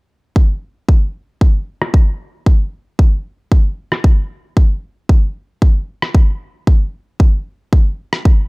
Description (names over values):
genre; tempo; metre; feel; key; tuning
nu-disco, nu disco; 114 BPM; 4/4; straight; none; none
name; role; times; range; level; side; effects
electronic kick drum; drums; 0.4-8.4 s; none; -10 LUFS; equal; small room ambience
rim click; drums; 1.8-8.2 s; none; -20 LUFS; equal; low-pass filter on snare, small room ambience, low-pass filter on room
room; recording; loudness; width
little or no reverb; none; -13 LUFS; side -31 dB against mid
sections
0.4-8.5 A section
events
filter sweep on drum 0.4-8.5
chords
none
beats
| 0.36 0.89 1.41 1.94 | 2.47 2.99 3.52 4.04 | 4.57 5.10 5.62 6.15 | 6.68 7.20 7.73 8.26